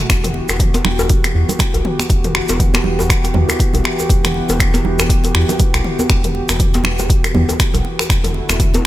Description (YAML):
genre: afro house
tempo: 120 BPM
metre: 4/4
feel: swing 58% on 16ths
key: E minor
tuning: A4 = 440 Hz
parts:
  - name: warm analog pad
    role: sustained chords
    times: 0.0-8.9 s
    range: D3 to G4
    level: -22 LUFS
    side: equal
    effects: chorus, sidechain pumping
  - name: round analog bass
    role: bass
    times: 0.0-8.9 s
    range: E1 to E2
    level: -20 LUFS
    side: equal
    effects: sidechain pumping
  - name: deep house drum kit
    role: drums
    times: 0.1-8.8 s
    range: finger snaps, hi-hat, toms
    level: -20 LUFS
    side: equal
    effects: none
  - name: electronic kick drum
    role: drums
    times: 0.1-8.7 s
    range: none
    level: -16 LUFS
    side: equal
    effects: none
  - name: congas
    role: percussion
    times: 0.1-8.8 s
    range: none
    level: -23 LUFS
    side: right 2 dB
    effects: none
  - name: egg shaker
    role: percussion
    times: 0.1-8.8 s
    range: none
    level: -29 LUFS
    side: right 3 dB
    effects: none
  - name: djembe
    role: percussion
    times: 0.2-8.8 s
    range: none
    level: -25 LUFS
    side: left 3 dB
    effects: none
room: light reverb, studio ambience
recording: none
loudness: -13 LUFS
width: side -15 dB against mid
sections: 0.0-8.9 A section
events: none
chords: 0.1 Em; 8.1 D/E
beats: | 0.10 0.60 1.10 1.60 | 2.10 2.60 3.10 3.60 | 4.10 4.60 5.10 5.60 | 6.10 6.60 7.10 7.60 | 8.10 8.60